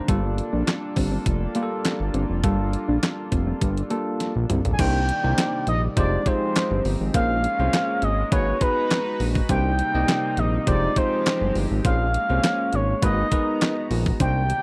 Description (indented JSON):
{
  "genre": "early-eighties boogie funk",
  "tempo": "102 BPM",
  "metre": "4/4",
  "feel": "straight",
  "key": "C phrygian from 4.8 s",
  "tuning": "A4 = 440 Hz",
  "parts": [
    { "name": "barky tine electric piano", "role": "accompaniment", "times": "0.0-14.4 s", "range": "G3 to Eb5", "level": "-31 LUFS", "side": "equal", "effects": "none" },
    { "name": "chorused pulse-width pad", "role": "sustained chords", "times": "0.0-14.6 s", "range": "C3 to Bb5", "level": "-32 LUFS", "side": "equal", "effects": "none" },
    { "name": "mellow electric guitar", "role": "riff", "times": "0.1-4.6, 14.2-14.5 s", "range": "G3 to D4", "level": "-30 LUFS", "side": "equal", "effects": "ensemble chorus" },
    { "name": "fat analog bass", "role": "bass", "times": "0.1-14.5 s", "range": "F1 to C2", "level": "-26 LUFS", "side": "equal", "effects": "none" },
    { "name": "crisp 8-bit digital drum machine", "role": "drums", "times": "0.1-14.6 s", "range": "crash cymbal, handclaps, hi-hat, kick drum, snare drum, toms", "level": "-27 LUFS", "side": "equal", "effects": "none" },
    { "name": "expressive synth lead", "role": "melody", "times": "4.7-14.6 s", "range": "Cb5 to Ab5", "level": "-27 LUFS", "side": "equal", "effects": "chorus" }
  ],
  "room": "little or no reverb",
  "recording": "dry, close 1970s-style studio recording",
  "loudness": "-23 LUFS",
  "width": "mono",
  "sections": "0.0-4.8 A section; 4.8-14.6 B section",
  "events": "drum fill 4.2-4.8",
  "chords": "0.1 Gm9; 4.8 Cm9; 6.0 Fm9; 7.1 Bbm9; 8.3 Abm9; 9.5 Cm9; 10.7 Fm9; 11.8 Bbm9; 13.0 Abm9",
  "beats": "| 0.08 0.67 1.26 1.85 | 2.44 3.02 3.61 4.20 | 4.79 5.38 5.97 6.55 | 7.14 7.73 8.32 8.91 | 9.49 10.08 10.67 11.26 | 11.85 12.44 13.03 13.61 | 14.20"
}